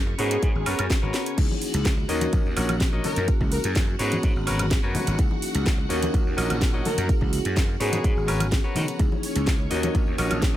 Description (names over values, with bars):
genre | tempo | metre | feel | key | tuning
filtered disco house | 126 BPM | 4/4 | straight | C# dorian | A4 = 440 Hz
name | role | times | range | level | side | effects
bell-like tine electric piano | accompaniment | 0.0-10.6 s | A#3 to A#4 | -31 LUFS | equal | phaser, vintage 12-bit sampler grit, sidechain pumping
string machine, full ensemble | sustained chords | 0.0-10.6 s | C#4 to F#5 | -35 LUFS | equal | ensemble chorus, vintage 12-bit sampler grit, sidechain pumping
gritty slap bass | bass | 0.0-10.6 s | G#1 to D#3 | -27 LUFS | equal | overdrive, sidechain pumping
semi-hollow electric guitar | riff | 0.1-10.6 s | F#4 to F#5 | -31 LUFS | left 3 dB | sidechain pumping
analog synth brass | melody | 0.2-3.7, 6.9-8.5 s | G#4 to A#4 | -31 LUFS | left 1 dB | chorus, sidechain pumping
house drum kit | drums | 0.2-10.5 s | crash cymbal, hi-hat, snare drum, woodblock | -30 LUFS | right 1 dB | none
electronic kick drum | drums | 0.4-10.5 s | none | -23 LUFS | equal | none
tambourine and congas | percussion | 1.4-10.6 s | none | -34 LUFS | left 3 dB | sidechain pumping on perc
room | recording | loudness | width
little or no reverb | none | -21 LUFS | side -13 dB against mid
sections
0.0-10.6 A section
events
drum fill 1.1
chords
0.2 G#m11; 1.4 C#m69; 2.1 D#m7; 3.3 F#9; 4.0 G#m11; 5.2 C#m69; 5.9 D#m7; 7.1 F#9; 7.8 G#m11; 9.0 C#m69; 9.7 D#m7